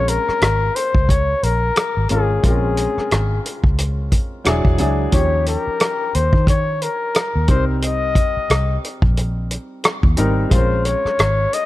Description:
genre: lush 1970s-style soul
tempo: 89 BPM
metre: 4/4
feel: swing 58% on 16ths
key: Bb dorian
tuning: A4 = 439 Hz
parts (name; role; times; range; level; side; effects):
- breathy flugelhorn; melody; 0.0-11.7 s; Ab4 to Eb5; -20 LUFS; left 3 dB; none
- clear grand piano; accompaniment; 0.0-11.7 s; F3 to Bb4; -25 LUFS; left 1 dB; none
- vintage muted fingered electric bass; bass; 0.0-11.5 s; E1 to Eb3; -20 LUFS; equal; none
- warm soul drum kit; drums; 0.1-11.7 s; hi-hat, kick drum, rim click; -18 LUFS; equal; none
room: light reverb, small room ambience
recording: dark, warm production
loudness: -15 LUFS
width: side -16 dB against mid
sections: 0.0-11.7 A section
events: none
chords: 0.0 Bbm7; 4.5 E9; 5.1 Eb9; 7.5 Cm7; 10.5 Bbm7

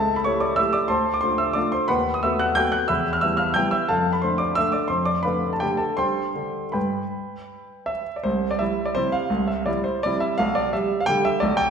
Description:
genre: classical, piano waltz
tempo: 154-191 BPM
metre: 3/4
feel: rubato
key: C major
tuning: A4 = 445 Hz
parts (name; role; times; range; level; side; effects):
- warm grand piano; solo; 0.0-11.7 s; B1 to G6; -20 LUFS; equal; none
room: wet recital hall reverb, RT60 1.6 s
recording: recorded in a church or concert hall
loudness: -20 LUFS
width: side -6 dB against mid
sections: 0.0-8.3 A section; 8.3-11.7 B section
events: none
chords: 0.0 A7/C#; 0.9 Dm7; 1.9 B7/D#; 2.9 Em; 3.9 Dm/F; 6.0 G; 8.3 C; 10.4 G/B

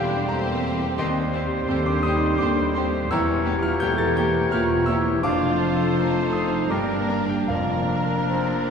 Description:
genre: classical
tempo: 74-86 BPM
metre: 3/4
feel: rubato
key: unclear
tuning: A4 = 440 Hz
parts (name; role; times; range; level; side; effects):
- bright concert grand piano; melody; 0.0-8.7 s; Eb2 to A6; -26 LUFS; left 1 dB; none
- rich studio violin section; melody; 0.0-8.7 s; G4 to C#5; -37 LUFS; left 3 dB; none
- bright oboe; second line; 0.0-8.7 s; Bb4 to C#5; -32 LUFS; right 1 dB; none
- clear clarinet; second line; 0.0-8.7 s; D4 to G4; -32 LUFS; left 3 dB; none
- mellow hollow concert flute; second line; 0.0-8.7 s; A5 to C6; -33 LUFS; equal; none
- warm studio violin section; second line; 0.0-8.7 s; D4 to G4; -33 LUFS; left 2 dB; none
- mellow bassoon; accompaniment; 0.0-8.7 s; E3 to C4; -32 LUFS; equal; none
- warm studio viola section; accompaniment; 0.0-8.7 s; A3 to D4; -32 LUFS; right 2 dB; none
- dark French horn section; sustained chords; 0.0-8.7 s; F3 to A4; -27 LUFS; left 1 dB; none
- rich studio cello section; bass; 0.0-8.7 s; Eb2 to G2; -30 LUFS; right 2 dB; none
- rich studio double bass section; bass; 0.0-8.7 s; E1 to Eb2; -30 LUFS; right 2 dB; none
- timpani; percussion; 7.5-8.7 s; F2; -33 LUFS; right 1 dB; none
room: wet recital hall reverb, RT60 1.9 s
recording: heard from further back in the room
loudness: -20 LUFS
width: side -6 dB against mid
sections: 0.0-8.7 A section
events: none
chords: 0.0 C/E; 1.0 Cm/Eb; 3.1 Edim7; 5.2 F; 6.7 Gm; 7.5 Bb/F

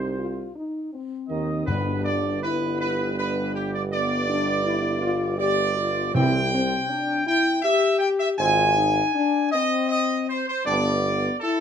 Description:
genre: classical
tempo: 80 BPM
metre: 3/4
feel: straight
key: unclear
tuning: A4 = 440 Hz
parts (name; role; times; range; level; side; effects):
- dark trumpet section; melody; 0.0-11.6 s; G4 to Ab5; -24 LUFS; right 1 dB; none
- mellow French horn section; sustained chords; 0.0-11.6 s; B3 to G4; -26 LUFS; left 4 dB; none
- mellow trombone section; sustained chords; 0.0-10.9 s; C3 to D4; -32 LUFS; right 4 dB; none
- mellow tuba; bass; 0.0-11.3 s; G1 to Eb2; -28 LUFS; right 4 dB; none
- timpani; percussion; 1.7-2.8, 6.1-7.2 s; G2 to C3; -28 LUFS; right 1 dB; none
room: light reverb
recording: close, detailed microphones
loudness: -21 LUFS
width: side -8 dB against mid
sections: 0.0-11.6 A section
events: none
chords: 0.0 Cmadd11; 1.7 G; 6.1 C; 8.4 Ab; 10.7 G

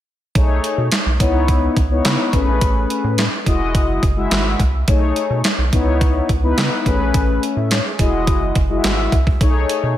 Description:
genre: early-eighties boogie funk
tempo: 106 BPM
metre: 4/4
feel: straight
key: unclear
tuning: A4 = 440 Hz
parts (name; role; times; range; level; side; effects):
- mellow synth brass; accompaniment; 0.4-9.9 s; G#3 to E5; -19 LUFS; left 3 dB; chorus, slapback echo
- rubbery square bass; bass; 0.4-10.0 s; E1 to C#3; -19 LUFS; equal; none
- detuned 8-bit digital drum machine; drums; 0.4-9.8 s; handclaps, hi-hat, kick drum, snare drum; -18 LUFS; right 1 dB; none
room: light reverb, digital ambience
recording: none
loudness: -15 LUFS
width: side -12 dB against mid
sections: 0.4-10.0 A section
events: none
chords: 0.4 B13; 1.2 C#m9; 2.3 Amaj9; 3.5 Emaj9; 4.9 B13; 5.7 C#m9; 6.9 Amaj9; 8.0 Emaj9; 9.4 B13

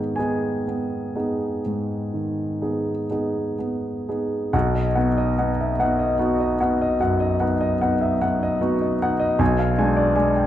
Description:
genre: classical, romantic nocturne for solo piano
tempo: 40-52 BPM (dotted quarters)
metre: 12/8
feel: rubato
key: G# minor, B major from 4.5 s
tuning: A4 = 440 Hz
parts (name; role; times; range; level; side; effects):
- warm grand piano; solo; 0.0-10.5 s; B1 to G#5; -20 LUFS; equal; none
room: moderate recital hall reverb, RT60 1.7 s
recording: dark, warm production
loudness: -20 LUFS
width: side -12 dB against mid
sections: 0.0-4.5 A section; 4.5-10.5 B section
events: none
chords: 0.0 G#m; 4.5 B; 9.4 Bdim7

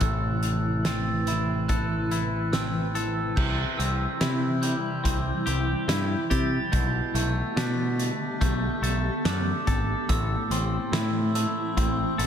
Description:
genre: post-rock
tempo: 72 BPM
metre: 4/4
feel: straight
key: unclear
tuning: A4 = 440 Hz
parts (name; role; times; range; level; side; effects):
- granular cloud pad; sustained chords; 0.0-12.3 s; C3 to B4; -32 LUFS; right 1 dB; built-in reverb
- glockenspiel with hard plastic mallets; arpeggios; 0.0-12.3 s; C6 to B6; -33 LUFS; right 2 dB; tape echo
- twangy electric guitar; arpeggios; 0.0-12.3 s; A2 to A4; -32 LUFS; left 4 dB; tape echo
- growling picked electric bass; bass; 0.0-12.3 s; G#1 to C3; -27 LUFS; equal; overdrive
- loose indie drum kit; drums; 0.0-12.3 s; crash cymbal, hi-hat, kick drum, snare drum; -29 LUFS; equal; none
room: moderate lush hall reverb, RT60 3.0 s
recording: dreamy mix soaked in reverb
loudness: -23 LUFS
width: side -8 dB against mid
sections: 0.0-3.4 A section; 3.4-12.3 B section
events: none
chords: 0.0 Am; 3.4 C; 6.7 Gadd9/B; 10.1 Am

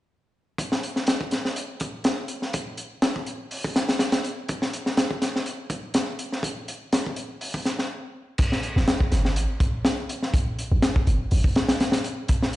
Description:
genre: breakbeat, breaks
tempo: 123 BPM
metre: 4/4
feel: swing 54% on 16ths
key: unclear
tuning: A4 = 440 Hz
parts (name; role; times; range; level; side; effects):
- crunchy breakbeat drum kit; drums; 0.6-12.6 s; crash cymbal, hi-hat, kick drum, snare drum; -23 LUFS; equal; high-pass filter on kick, high-pass filter on hats, high-pass filter on cymbals, high-pass filter on snare, high-pass filter on room
- warm 808-style bass; bass; 8.8-11.4 s; G1 to A1; -21 LUFS; equal; none
room: wet small room reverb, RT60 0.5 s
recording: played on a big sound system in a bare room, stone room reverb, nothing above 10.3 kHz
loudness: -23 LUFS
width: side -16 dB against mid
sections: 0.6-8.4 A section; 8.4-12.6 B section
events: stop 7.9-8.4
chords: none

